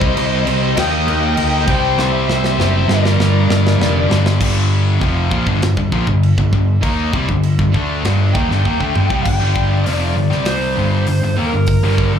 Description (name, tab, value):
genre	hard rock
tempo	99 BPM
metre	4/4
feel	straight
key	G minor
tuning	A4 = 437 Hz
part	bluesy overdriven lead guitar	melody	0.0-4.1, 8.3-12.2 s	Bb4 to G5	-21 LUFS	left 1 dB	distortion, slapback echo
part	bluesy overdriven lead guitar	second line	0.0-4.1 s	Bb4 to Eb5	-25 LUFS	right 2 dB	distortion, slapback echo
part	tonewheel organ	sustained chords	0.0-4.4 s	G3 to A5	-29 LUFS	equal	none
part	sludgy distorted guitar	riff	0.0-12.2 s	F2 to Eb4	-21 LUFS	right 10 dB	overdrive
part	tight distorted guitar	riff	0.0-12.2 s	F2 to Eb4	-21 LUFS	left 11 dB	distortion, slapback echo
part	picked electric bass	bass	0.0-12.2 s	F1 to Eb2	-17 LUFS	equal	none
part	tight metal drum kit	drums	0.0-12.1 s	crash cymbal, hi-hat, kick drum, snare drum, toms	-22 LUFS	equal	none
room	light reverb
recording	live gig heard through the venue's PA, club reverb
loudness	-13 LUFS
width	side -8 dB against mid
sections	0.0-4.4 A section; 4.4-9.3 B section; 9.3-12.2 C section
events	drum fill 2.0-4.4, 8.6-9.3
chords	0.0 Cm; 0.8 Eb; 1.7 C; 2.9 Gm